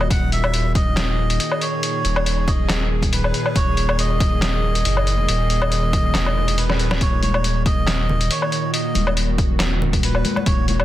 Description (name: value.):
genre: deep dubstep.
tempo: 139 BPM.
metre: 4/4.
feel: swing 54% on 16ths, half-time.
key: Eb phrygian.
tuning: A4 = 440 Hz.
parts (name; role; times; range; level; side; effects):
melodica; melody; 0.0-10.8 s; Cb5 to Gb5; -26 LUFS; right 1 dB; dub echo.
bowed-like drone; sustained chords; 0.0-10.8 s; Bb2 to Ab4; -26 LUFS; equal; built-in reverb.
saturated sub bass; bass; 0.0-10.8 s; Eb1 to Gb1; -21 LUFS; equal; none.
trip hop sampler-style drum kit; drums; 0.0-10.8 s; handclaps, hi-hat, snare drum, woodblock; -23 LUFS; left 1 dB; none.
electronic kick drum; drums; 0.1-10.6 s; none; -21 LUFS; equal; overdrive.
congas; percussion; 7.2-10.8 s; none; -27 LUFS; left 2 dB; none.
room: digital ambience.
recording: dense, heavily limited modern master.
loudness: -17 LUFS.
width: side -13 dB against mid.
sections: 0.0-10.8 A section.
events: kick drops out 6.1-7.0; drum fill 6.7-7.0.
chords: 0.0 Ebm.